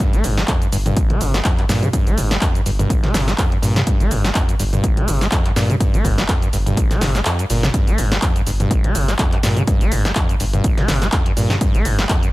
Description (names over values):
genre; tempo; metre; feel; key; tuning
acid house; 124 BPM; 4/4; swing 56% on 16ths; G minor; A4 = 440 Hz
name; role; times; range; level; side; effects
acid bass, saw; riff; 0.0-12.3 s; G1 to Bb3; -21 LUFS; equal; overdrive, wide subtle chorus, sidechain pumping
electronic kick drum; drums; 0.0-12.2 s; none; -18 LUFS; equal; none
punchy analog drum machine; drums; 0.0-12.3 s; handclaps, hi-hat, shaker, snare drum, toms; -22 LUFS; equal; none
round analog bass; bass; 0.1-12.1 s; G1 to G2; -20 LUFS; equal; sidechain pumping
room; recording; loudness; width
little or no reverb; none; -15 LUFS; side -18 dB against mid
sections
0.0-12.3 A section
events
kick drops out 7.3-7.7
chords
0.0 Gm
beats
| 0.00 0.48 0.96 1.45 | 1.93 2.42 2.90 3.38 | 3.87 4.35 4.84 5.32 | 5.80 6.29 6.77 7.26 | 7.74 8.22 8.71 9.19 | 9.68 10.16 10.64 11.13 | 11.61 12.09